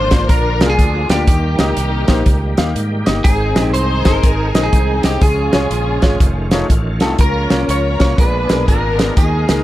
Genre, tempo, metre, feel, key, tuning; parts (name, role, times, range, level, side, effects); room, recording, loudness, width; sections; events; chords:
uptempo gospel; 122 BPM; 4/4; swing 65% on 8ths; A4 = 444 Hz
clean electric guitar; melody; 0.0-9.6 s; G4 to Db5; -21 LUFS; right 3 dB; lush chorus
warm studio string section; melody; 0.0-9.6 s; Bb3 to Db5; -22 LUFS; left 4 dB
warm grand piano; accompaniment; 0.0-9.6 s; Ab2 to F5; -22 LUFS; left 2 dB
bright tonewheel organ; sustained chords; 0.0-9.6 s; D3 to Bb4; -26 LUFS; right 3 dB; fast rotary speaker, overdrive, chorus vibrato
fingered electric bass; bass; 0.0-9.6 s; F1 to Ab2; -19 LUFS; equal
warm soul drum kit; drums; 0.1-9.6 s; hi-hat, kick drum, snare drum; -14 LUFS; equal
small room ambience; -12 LUFS; side -15 dB against mid
0.0-9.6 A section
0.0 Bb; 1.3 Eb; 3.2 Ab; 5.2 Db; 6.2 F7alt; 7.2 Bbm; 8.2 Bb7b9